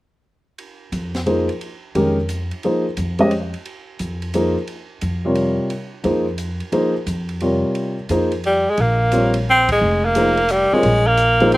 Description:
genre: modal jazz.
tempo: 176 BPM.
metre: 3/4.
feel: swing 65% on 8ths.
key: Bb dorian.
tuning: A4 = 439 Hz.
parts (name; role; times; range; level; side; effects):
open jazz drum kit; drums; 0.6-11.6 s; hi-hat, kick drum, ride cymbal, snare drum; -34 LUFS; right 2 dB; none.
upright bass; bass; 0.9-11.6 s; F1 to F2; -22 LUFS; equal; none.
warm grand piano; accompaniment; 1.3-11.6 s; C3 to Eb5; -18 LUFS; equal; slapback echo.
clear tenor saxophone; melody; 8.5-11.6 s; G3 to C4; -15 LUFS; equal; slapback echo.
room: little or no reverb.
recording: recorded outdoors, with no room sound.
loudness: -16 LUFS.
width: side -18 dB against mid.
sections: 0.6-8.8 A section; 8.8-11.6 B section.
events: band accent 9.6.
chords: 0.6 Bb9sus4.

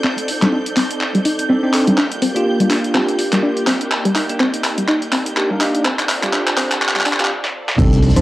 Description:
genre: deep house.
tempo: 124 BPM.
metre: 4/4.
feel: swing 57% on 16ths.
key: unclear.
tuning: A4 = 440 Hz.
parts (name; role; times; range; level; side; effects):
soft string machine; sustained chords; 0.0-8.2 s; Bb3 to D5; -26 LUFS; equal; ensemble chorus, sidechain pumping, cassette tape.
soft round pluck; arpeggios; 0.0-8.2 s; G3 to C5; -19 LUFS; left 1 dB; chorus, sidechain pumping, cassette tape, analog delay.
deep house drum kit; drums; 0.0-8.2 s; crash cymbal, handclaps, hi-hat, shaker, snare drum; -20 LUFS; equal; overdrive, high-pass filter on hats, high-pass filter on snare, high-pass filter on cymbals, high-pass filter on perc, high-pass filter on room.
analog string pad; texture; 0.0-7.3 s; G6; -30 LUFS; right 2 dB; ensemble chorus, phaser, sidechain pumping, cassette tape.
bell-like tine electric piano; stabs; 0.4-8.2 s; Bb3 to C5; -20 LUFS; equal; phaser, sidechain pumping, cassette tape, tape echo.
modern bright fingered electric bass; bass; 7.8-8.2 s; C2 to F2; -13 LUFS; equal; tube saturation, sidechain pumping.
electronic kick drum; drums; 7.8-7.9 s; none; -15 LUFS; equal; overdrive.
tambourine and hi-hat; drums; 7.8-8.2 s; none; -37 LUFS; equal; sidechain pumping on hats, high-pass filter on hats, sidechain pumping on perc, high-pass filter on perc, high-pass filter on room.
impact; sound effects; 7.8-8.2 s; none; -18 LUFS; equal; none.
room: wet spring reverb, RT60 1.2 s.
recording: home recording on cassette, high-pass filter.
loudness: -14 LUFS.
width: side -16 dB against mid.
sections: 0.0-7.8 A section.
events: build-up 0.0-7.8; filter sweep on synth arpeggio sound 0.0-7.8; filter sweep 0.0-7.8; drum fill 0.0-7.3, 7.4-7.8; break 7.3-7.8; impact 7.8-8.2.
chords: 0.0 Cm69; 2.0 Bb6; 3.7 Ebmaj7; 5.8 Dm7.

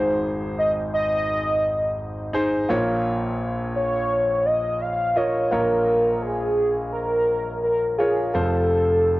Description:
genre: pop.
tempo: 85 BPM.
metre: 4/4.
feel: straight.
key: Bb minor.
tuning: A4 = 440 Hz.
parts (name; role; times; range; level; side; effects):
warm velvety synth lead; melody; 0.0-9.2 s; Ab4 to F5; -21 LUFS; equal; chorus, cassette tape.
warm grand piano; accompaniment; 0.0-9.2 s; F1 to Eb5; -24 LUFS; equal; cassette tape.
room: moderate studio reverb, RT60 0.5 s.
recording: home recording on cassette.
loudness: -20 LUFS.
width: side -18 dB against mid.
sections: 0.0-9.2 A section.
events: none.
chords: 0.0 Ab; 2.7 Bbm; 8.3 F.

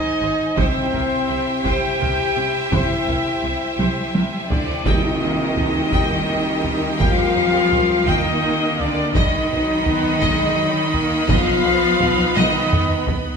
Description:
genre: cinematic, epic orchestral film score.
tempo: 56 BPM (dotted quarters).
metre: 6/8.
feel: straight.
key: Eb major.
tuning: A4 = 444 Hz.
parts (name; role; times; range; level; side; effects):
rich symphonic violin section; melody; 0.0-12.7 s; F#4 to Ab5; -29 LUFS; left 2 dB; none.
rich symphonic violin section; second line; 0.0-13.1 s; D5 to F5; -26 LUFS; left 1 dB; none.
clear symphonic string section; sustained chords; 0.0-13.4 s; Bb3 to B5; -27 LUFS; right 1 dB; none.
warm French horn section; sustained chords; 0.0-13.1 s; C4 to G4; -23 LUFS; left 4 dB; none.
warm trumpet section; stabs; 0.0-13.1 s; C5 to G5; -26 LUFS; right 1 dB; none.
rich symphonic viola section; accompaniment; 0.2-13.4 s; F#3 to C5; -28 LUFS; right 2 dB; none.
rich symphonic cello section; bass; 0.2-13.1 s; Ab2 to F3; -25 LUFS; right 2 dB; none.
rich symphonic double bass section; bass; 0.2-12.4 s; Ab1 to Eb2; -28 LUFS; right 3 dB; none.
taiko ensemble; drums; 0.6-13.4 s; none; -23 LUFS; equal; none.
cymbal swell and tam-tam; percussion; 0.6-7.7 s; none; -30 LUFS; equal; none.
room: wet recital hall reverb, RT60 1.4 s.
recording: recorded in a church or concert hall.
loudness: -16 LUFS.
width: side -6 dB against mid.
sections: 0.0-4.9 A section; 4.9-13.4 B section.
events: drum fill 3.8-4.9, 12.4-13.4; band accent 4.9-5.6.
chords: 0.0 Ab; 0.6 C; 4.9 Eb; 9.1 B.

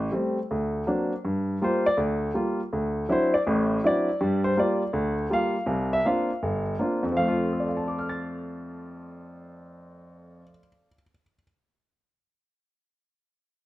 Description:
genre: jazz.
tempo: 162 BPM.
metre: 4/4.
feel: swing 64% on 8ths.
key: F major.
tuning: A4 = 437 Hz.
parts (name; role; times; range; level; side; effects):
warm grand piano; solo; 0.0-11.4 s; G1 to A6; -24 LUFS; equal; none.
room: light reverb.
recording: close, detailed microphones.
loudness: -23 LUFS.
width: side -16 dB against mid.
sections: 0.0-1.2 A section; 1.2-7.1 B section; 7.1-10.1 C section.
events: none.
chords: 0.5 D7b13; 1.2 Gm7; 2.7 D9; 4.2 Gm7; 5.7 C9sus4; 7.1 F.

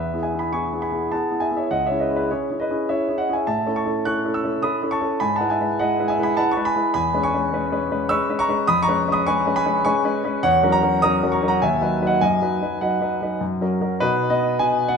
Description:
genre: classical-period piano sonatina.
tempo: 103 BPM.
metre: 3/4.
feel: straight.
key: E major, B major from 7.0 s.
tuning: A4 = 440 Hz.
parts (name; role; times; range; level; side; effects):
clear concert grand piano; solo; 0.0-15.0 s; C#2 to F#6; -19 LUFS; equal; none.
room: moderate recital hall reverb, RT60 1.5 s.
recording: minimal, uncompressed stereo recording.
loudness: -19 LUFS.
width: side -6 dB against mid.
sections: 0.0-14.0 A section.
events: none.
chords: 0.0 E; 1.7 C#m; 3.5 A; 5.2 E/G#; 7.0 C#m7/E; 8.7 C#7(no3); 10.4 F#7/E; 11.6 B/D#; 12.2 B/F#; 13.4 F#; 14.0 B.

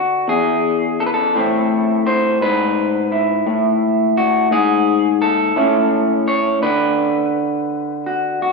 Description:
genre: folk, solo fingerstyle acoustic guitar.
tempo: 56 BPM (dotted quarters).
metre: 6/8.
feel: rubato.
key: unclear.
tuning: A4 = 441 Hz.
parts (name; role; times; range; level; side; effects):
electric guitar through a small old amp; solo; 0.0-8.5 s; E2 to C#5; -14 LUFS; left 1 dB; none.
room: wet concert hall reverb, RT60 2.3 s.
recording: recorded in a church or concert hall.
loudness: -14 LUFS.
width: side -2 dB against mid.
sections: 0.3-8.5 A section.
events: none.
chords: 0.3 N.C.; 1.4 Am; 2.4 E/G#; 3.5 N.C.; 5.6 A; 6.6 D6.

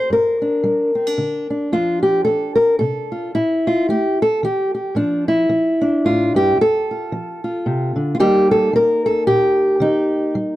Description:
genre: folk, solo fingerstyle acoustic guitar.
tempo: 112 BPM.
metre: 3/4.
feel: swing 58% on 8ths.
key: unclear.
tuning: A4 = 436 Hz.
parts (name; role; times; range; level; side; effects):
fingerpicked old ladder-braced acoustic guitar; solo; 0.0-10.6 s; F2 to C5; -15 LUFS; equal; none.
room: light reverb.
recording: dry, close 1970s-style studio recording.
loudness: -15 LUFS.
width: side -15 dB against mid.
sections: 0.0-8.2 A section; 8.2-10.6 B section.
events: none.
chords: 0.1 Gm; 1.7 F6; 3.3 A5; 5.0 Dm/A; 6.6 F6; 8.2 Eb.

